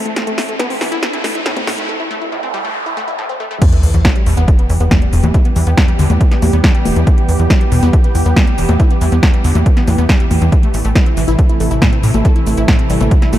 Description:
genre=uplifting trance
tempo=139 BPM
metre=4/4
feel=straight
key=E minor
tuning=A4 = 437 Hz
part: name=lush unison pad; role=sustained chords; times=0.0-13.4 s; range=C3 to A4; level=-22 LUFS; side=right 1 dB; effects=chorus, sidechain pumping
part: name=riser, noise sweep and sub drop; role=sound effects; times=0.0-5.3 s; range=none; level=-20 LUFS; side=equal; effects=none
part: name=wide unison pluck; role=arpeggios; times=0.1-13.4 s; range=E2 to A4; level=-20 LUFS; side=left 2 dB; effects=cassette tape, sidechain pumping, dub echo
part: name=techno drum kit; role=drums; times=0.1-13.4 s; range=congas, crash cymbal, hi-hat, shaker, snare drum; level=-19 LUFS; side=equal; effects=sidechain pumping on hats, sidechain pumping on perc, sidechain pumping on cymbals
part: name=electronic kick drum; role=drums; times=3.6-13.2 s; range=none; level=-12 LUFS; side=equal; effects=none
part: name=tight sequencer bass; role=bass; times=3.8-13.4 s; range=E1 to A2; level=-14 LUFS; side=equal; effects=tube saturation, sidechain pumping
room=little or no reverb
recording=dark, warm production, high-pass filter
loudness=-11 LUFS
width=side -13 dB against mid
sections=0.0-3.6 A section; 3.6-13.4 B section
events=build-up 0.0-3.6; drum fill 0.0-1.9; riser 0.0-1.9; filter sweep on synth pluck 0.0-3.6; filter sweep 0.0-3.6; break 1.9-3.6; noise sweep 1.9-3.6; drop 3.6-13.4; impact 3.6-5.3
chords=0.0 Am; 3.6 Em; 10.5 Am

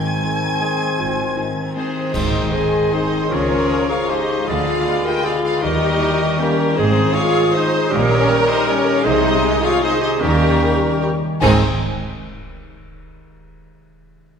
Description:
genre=classical, orchestral ballroom waltz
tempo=143-169 BPM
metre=3/4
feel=rubato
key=Ab major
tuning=A4 = 445 Hz
part: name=rich symphonic violin section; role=melody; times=0.0-11.6 s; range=Ab4 to Ab6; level=-24 LUFS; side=left 4 dB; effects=none
part: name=bright oboe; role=second line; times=0.0-11.6 s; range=Eb4 to Ab5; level=-27 LUFS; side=right 2 dB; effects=none
part: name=silver concert flute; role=second line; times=0.0-11.6 s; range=Ab5 to Eb6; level=-29 LUFS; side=left 1 dB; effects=none
part: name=warm clarinet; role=second line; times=0.0-11.6 s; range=C4 to C5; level=-25 LUFS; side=left 1 dB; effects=none
part: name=mellow bassoon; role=accompaniment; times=0.0-11.6 s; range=Eb3 to C4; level=-28 LUFS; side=right 2 dB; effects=none
part: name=bright trombone section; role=sustained chords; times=0.0-11.6 s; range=Ab2 to C4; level=-31 LUFS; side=right 3 dB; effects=none
part: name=mellow French horn section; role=sustained chords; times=0.0-11.6 s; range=Ab3 to C5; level=-24 LUFS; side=left 3 dB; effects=none
part: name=concert harp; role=arpeggios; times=0.0-12.6 s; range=Ab2 to Eb6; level=-25 LUFS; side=left 2 dB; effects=none
part: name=rich symphonic cello section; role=bass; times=0.0-11.6 s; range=Ab2 to Eb3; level=-26 LUFS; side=right 3 dB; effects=none
part: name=rich symphonic double bass section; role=bass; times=0.0-11.6 s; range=Ab1 to Eb2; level=-25 LUFS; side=right 3 dB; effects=none
part: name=warm symphonic violin section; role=second line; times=0.2-11.6 s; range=Bb3 to Ab5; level=-28 LUFS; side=left 2 dB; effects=none
part: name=warm symphonic viola section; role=accompaniment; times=0.2-11.6 s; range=Eb3 to C5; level=-23 LUFS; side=right 1 dB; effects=none
part: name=clash cymbals and concert bass drum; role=percussion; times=2.1-2.9, 11.4-12.2 s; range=none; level=-28 LUFS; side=right 1 dB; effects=none
room=wet concert hall reverb, RT60 1.8 s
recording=minimal, uncompressed stereo recording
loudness=-15 LUFS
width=side -7 dB against mid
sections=0.0-2.1 A section; 2.1-11.4 B section; 11.4-12.6 C section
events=band accent 2.1-2.5, 11.4-11.8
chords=0.0 Ab; 3.3 Db; 4.5 Ddim7; 5.6 Eb7b9; 6.8 Ab; 7.9 Eb7/Bb; 9.0 Ab/C; 10.2 Eb7; 11.4 Ab

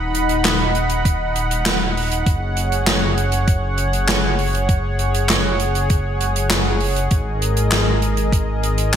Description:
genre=synthwave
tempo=99 BPM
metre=4/4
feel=straight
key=F# major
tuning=A4 = 440 Hz
part: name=warm analog pad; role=sustained chords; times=0.0-9.0 s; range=G#3 to B5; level=-22 LUFS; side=equal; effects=chorus, sidechain pumping
part: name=dark detuned saw bass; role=bass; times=0.0-9.0 s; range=D#1 to G#1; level=-21 LUFS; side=equal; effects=tube saturation, sidechain pumping
part: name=open jazz drum kit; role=drums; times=0.1-9.0 s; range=handclaps, hi-hat, snare drum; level=-20 LUFS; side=equal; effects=gated reverb
part: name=electronic kick drum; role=drums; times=1.1-8.4 s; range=none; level=-16 LUFS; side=equal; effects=none
room=light reverb, small room ambience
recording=bright 1980s-style digital production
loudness=-16 LUFS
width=side -9 dB against mid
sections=0.0-9.0 A section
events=none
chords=0.0 B/D#; 2.3 F#sus2; 7.1 G#sus2

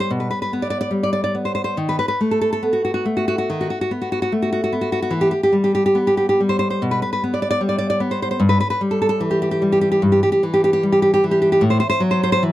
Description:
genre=romantic piece for solo classical guitar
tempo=73 BPM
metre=4/4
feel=uneven beats, rubato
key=E minor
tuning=A4 = 440 Hz
part: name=nylon-string guitar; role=solo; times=0.0-12.5 s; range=G2 to D5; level=-16 LUFS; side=equal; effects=none
room=little or no reverb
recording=dry, close 1970s-style studio recording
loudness=-16 LUFS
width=side -14 dB against mid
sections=0.0-12.5 A section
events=none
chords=0.0 Em (rootless); 1.8 B7(no3); 5.1 Em (rootless); 8.4 Em/G; 11.6 Am6

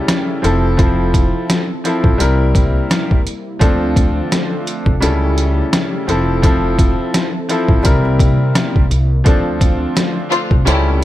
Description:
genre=hip hop, boom-bap hip-hop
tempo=85 BPM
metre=4/4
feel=swing 56% on 16ths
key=D minor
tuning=A4 = 439 Hz
part: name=bright upright piano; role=accompaniment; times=0.0-11.0 s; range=C#3 to Bb4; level=-18 LUFS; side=left 1 dB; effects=cassette tape, high-pass filter, low-pass filter
part: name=warm analog pad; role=sustained chords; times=0.0-11.0 s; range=C3 to A4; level=-25 LUFS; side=right 1 dB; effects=chorus, high-pass filter, low-pass filter
part: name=trip hop sampler-style drum kit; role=drums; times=0.1-10.9 s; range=hi-hat, kick drum, rim click, snare drum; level=-14 LUFS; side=equal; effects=overdrive
part: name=upright bass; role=bass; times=0.4-11.0 s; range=F1 to C3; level=-17 LUFS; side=equal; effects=none
part: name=warm studio string section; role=stabs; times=10.3-11.0 s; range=C4 to G4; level=-18 LUFS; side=left 2 dB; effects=high-pass filter, low-pass filter, tape echo
room=studio reverb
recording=none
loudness=-12 LUFS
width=side -14 dB against mid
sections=0.0-9.3 A section; 9.3-11.0 B section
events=none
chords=0.4 Fmaj7; 2.2 C7; 3.6 Dm7; 5.0 A7/C#; 6.1 Fmaj7; 7.8 C7; 9.3 Dm7

